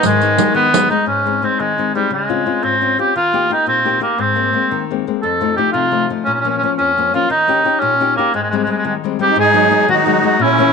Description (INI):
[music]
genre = italian folk, Italian serenade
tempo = 116 BPM (dotted quarters)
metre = 6/8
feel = straight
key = Ab major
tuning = A4 = 441 Hz
[part]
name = warm cor anglais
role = melody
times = 0.0-10.7 s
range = G3 to A4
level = -14 LUFS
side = right 1 dB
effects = none
[part]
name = musette accordion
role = second line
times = 0.0-0.7, 9.2-10.7 s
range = D#3 to Eb4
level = -18 LUFS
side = right 14 dB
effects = none
[part]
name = nylon-string guitar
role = accompaniment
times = 0.0-10.7 s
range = F2 to G4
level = -19 LUFS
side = left 11 dB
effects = none
[part]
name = riq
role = percussion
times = 0.0-0.9 s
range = none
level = -20 LUFS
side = right 14 dB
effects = none
[sound]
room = light reverb, small room reverb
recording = 1960s-style stereo with parts hard left and right, nothing above 10.8 kHz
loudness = -13 LUFS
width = side -5 dB against mid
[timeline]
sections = 0.0-1.1 A section; 1.1-9.4 B section; 9.4-10.7 C section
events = none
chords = 0.0 G#m; 1.1 Ab; 2.1 Dbmaj7; 3.1 Eb; 4.2 Abadd9; 5.2 F7; 6.3 Bbm; 7.3 Eb7; 8.3 Abmaj7; 9.4 G#m7